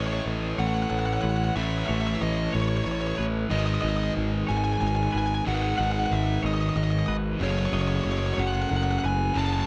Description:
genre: post-rock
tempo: 62 BPM (dotted quarters)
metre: 6/8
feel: straight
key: unclear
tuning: A4 = 441 Hz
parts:
  - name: fuzz lead guitar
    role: melody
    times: 0.0-9.7 s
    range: C#5 to A5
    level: -33 LUFS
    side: equal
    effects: distortion, tape echo
  - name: warm symphonic string section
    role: sustained chords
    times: 0.0-9.7 s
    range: G#3 to C#5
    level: -42 LUFS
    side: equal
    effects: none
  - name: clean electric guitar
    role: arpeggios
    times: 0.0-9.4 s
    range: B4 to F#5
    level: -41 LUFS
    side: equal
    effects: spring reverb, tape echo
  - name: distorted electric guitar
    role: riff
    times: 0.0-9.7 s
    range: F#2 to A3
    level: -31 LUFS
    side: equal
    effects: distortion
  - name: modern bright picked electric bass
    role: bass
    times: 0.0-9.6 s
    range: F#1 to A1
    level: -30 LUFS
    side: equal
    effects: none
room: little or no reverb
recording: dark, warm production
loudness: -26 LUFS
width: mono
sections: 0.0-9.7 A section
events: none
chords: 0.0 A; 3.5 G#m7; 7.4 F#m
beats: 0.58 | 1.56 2.53 | 3.50 4.48 | 5.45 6.43 | 7.40 8.38 | 9.35

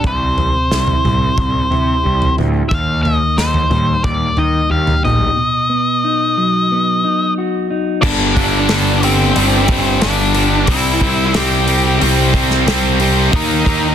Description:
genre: quiet-loud alternative rock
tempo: 90 BPM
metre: 4/4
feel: straight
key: unclear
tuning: A4 = 438 Hz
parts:
  - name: mellow electric guitar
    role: arpeggios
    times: 0.0-8.0 s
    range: B2 to G4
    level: -20 LUFS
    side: equal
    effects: none
  - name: fuzz picked electric bass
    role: bass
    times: 0.0-13.9 s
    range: G1 to Eb3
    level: -18 LUFS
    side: equal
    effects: overdrive
  - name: loose indie drum kit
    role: drums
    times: 0.0-13.8 s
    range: crash cymbal, hi-hat, kick drum, snare drum, toms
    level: -18 LUFS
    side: equal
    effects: soft clipping on kick
  - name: octave-fuzz lead guitar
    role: melody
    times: 0.1-13.9 s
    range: C4 to G5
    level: -17 LUFS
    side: left 1 dB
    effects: distortion
  - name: heavy high-gain guitar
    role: riff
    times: 8.0-13.9 s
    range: G2 to Eb4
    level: -18 LUFS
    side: right 13 dB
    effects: distortion
  - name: high-gain distorted guitar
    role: riff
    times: 8.0-13.9 s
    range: G2 to Eb4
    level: -18 LUFS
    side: left 13 dB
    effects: distortion
room: small room ambience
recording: dense, heavily limited modern master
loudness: -12 LUFS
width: side -9 dB against mid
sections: 0.0-8.0 A section; 8.0-13.9 B section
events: none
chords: 0.0 C; 2.7 Eb; 5.4 B; 8.0 G5; 10.7 C; 13.3 Eb5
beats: | 0.04 0.71 1.38 2.04 | 2.71 3.37 4.04 4.71 | 5.37 6.04 6.70 7.37 | 8.03 8.70 9.36 10.02 | 10.68 11.35 12.01 12.67 | 13.33

